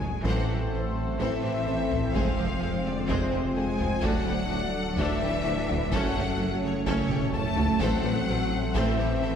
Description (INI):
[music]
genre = cinematic, hybrid orchestral and electronic film score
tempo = 127 BPM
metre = 4/4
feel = straight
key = A dorian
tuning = A4 = 442 Hz
[part]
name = rich symphonic violin section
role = melody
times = 0.0-9.4 s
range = C5 to A5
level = -33 LUFS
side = left 4 dB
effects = none
[part]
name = clear studio violin section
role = second line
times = 0.0-9.3 s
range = D4 to C#5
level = -37 LUFS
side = left 2 dB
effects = none
[part]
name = rich symphonic viola section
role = accompaniment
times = 0.0-9.3 s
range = E3 to F#4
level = -34 LUFS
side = right 1 dB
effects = none
[part]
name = warm analog pad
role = sustained chords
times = 0.0-9.4 s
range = F#3 to D5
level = -33 LUFS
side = left 1 dB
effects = chorus, phaser
[part]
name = dark detuned saw bass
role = bass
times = 0.0-9.4 s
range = D1 to A1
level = -35 LUFS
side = equal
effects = none
[part]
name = rich symphonic cello section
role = bass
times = 0.0-9.4 s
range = C3 to A3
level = -33 LUFS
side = right 2 dB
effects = none
[part]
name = rich symphonic double bass section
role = bass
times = 0.0-9.3 s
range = F#1 to F#2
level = -34 LUFS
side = right 2 dB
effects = none
[part]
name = taiko ensemble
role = drums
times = 0.0-9.2 s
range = none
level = -32 LUFS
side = equal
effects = none
[part]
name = dark French horn section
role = sustained chords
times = 0.2-9.4 s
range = Ab3 to D4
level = -35 LUFS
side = left 3 dB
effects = none
[part]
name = warm tuba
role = bass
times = 0.2-9.3 s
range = F1 to D2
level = -36 LUFS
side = right 2 dB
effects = none
[sound]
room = wet scoring stage reverb, RT60 1.7 s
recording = heard from further back in the room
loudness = -24 LUFS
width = side -8 dB against mid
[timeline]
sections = 0.2-9.4 A section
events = drum fill 0.0, 7.1-7.8; band accent 0.2-0.7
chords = 0.2 Am; 2.1 Fm; 4.0 D; 5.9 F#m; 7.8 Am